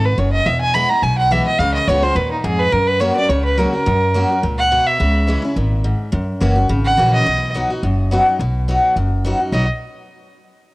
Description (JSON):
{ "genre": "bluegrass", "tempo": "212 BPM", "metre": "4/4", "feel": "swing 53% on 8ths", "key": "B major", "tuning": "A4 = 445 Hz", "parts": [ { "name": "clear fiddle", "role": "melody", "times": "0.0-7.5, 9.5-9.7 s", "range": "D#4 to B5", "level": "-17 LUFS", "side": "right 1 dB", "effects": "cassette tape" }, { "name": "picked steel-string acoustic guitar", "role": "accompaniment", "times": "0.0-9.7 s", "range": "E2 to G#4", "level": "-20 LUFS", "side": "left 1 dB", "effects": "none" }, { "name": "upright bass", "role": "bass", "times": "0.0-9.7 s", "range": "E1 to F#2", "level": "-18 LUFS", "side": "equal", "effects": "none" } ], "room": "light reverb, studio reverb", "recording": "home recording on cassette", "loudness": "-14 LUFS", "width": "side -21 dB against mid", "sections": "0.0-8.4 A section; 8.4-9.5 B section; 9.5-10.7 C section", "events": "none", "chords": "0.5 E; 1.6 C#7; 2.7 F#; 5.0 C#m; 6.1 F#7; 7.3 B" }